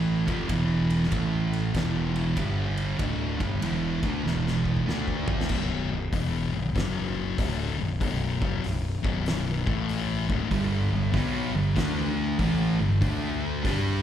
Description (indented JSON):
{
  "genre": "stoner and doom metal",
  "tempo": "96 BPM",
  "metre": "4/4",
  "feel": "swing 65% on 8ths",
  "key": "B minor",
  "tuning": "A4 = 439 Hz",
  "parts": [
    { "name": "thick fuzz guitar", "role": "riff", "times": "0.0-14.0 s", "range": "B1 to G4", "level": "-29 LUFS", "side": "left 6 dB", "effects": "distortion" },
    { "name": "thick fuzz guitar", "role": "riff", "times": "0.0-5.5, 10.5-14.0 s", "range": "D2 to G4", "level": "-27 LUFS", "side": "right 6 dB", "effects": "distortion" },
    { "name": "growling fingered electric bass", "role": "bass", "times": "0.0-14.0 s", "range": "B0 to G2", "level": "-31 LUFS", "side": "equal", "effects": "overdrive" },
    { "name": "oversized low-tuned drum kit", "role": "drums", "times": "0.3-13.8 s", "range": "crash cymbal, hi-hat, kick drum, ride cymbal, snare drum, toms", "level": "-32 LUFS", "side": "equal", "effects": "none" }
  ],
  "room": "little or no reverb",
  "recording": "live gig heard through the venue's PA, club reverb",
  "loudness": "-24 LUFS",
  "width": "side -10 dB against mid",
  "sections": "0.0-5.5 A section; 5.5-14.0 B section",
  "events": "drum fill 4.2-5.5",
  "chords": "0.2 F5; 0.5 E5; 1.1 A5; 1.7 E5; 2.4 G5; 3.0 E5; 4.9 D5; 5.5 B5; 6.8 F#5; 7.4 Bm; 9.6 A5; 10.2 D5; 10.5 G5; 11.8 D5; 12.4 G5; 13.0 D5"
}